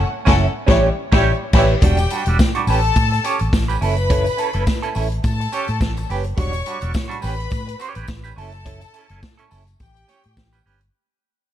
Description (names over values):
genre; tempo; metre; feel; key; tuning
disco; 105 BPM; 4/4; swing 56% on 16ths; unclear; A4 = 440 Hz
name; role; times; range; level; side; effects
rich studio violin section; second line; 0.0-10.6 s; G3 to C#6; -23 LUFS; left 4 dB; none
clean electric guitar; accompaniment; 0.0-10.9 s; G3 to C#5; -23 LUFS; right 5 dB; wah, tremolo
vintage muted fingered electric bass; bass; 0.0-10.9 s; E1 to A2; -21 LUFS; equal; none
vintage drum kit; drums; 0.3-10.9 s; crash cymbal, hi-hat, kick drum, snare drum; -19 LUFS; equal; none
tambourine; percussion; 2.0-10.6 s; none; -41 LUFS; left 11 dB; none
room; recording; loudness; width
studio ambience; dark, warm production; -16 LUFS; side -11 dB against mid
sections
0.0-1.8 A section; 1.8-10.9 B section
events
band accent 0.0-1.8; fade-out 1.8-10.9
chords
0.0 F#m7; 0.7 A9; 1.8 Em9; 2.7 A9; 3.8 F#m7; 5.2 A9; 6.4 Em9; 7.2 A9; 8.4 F#m7; 9.8 A9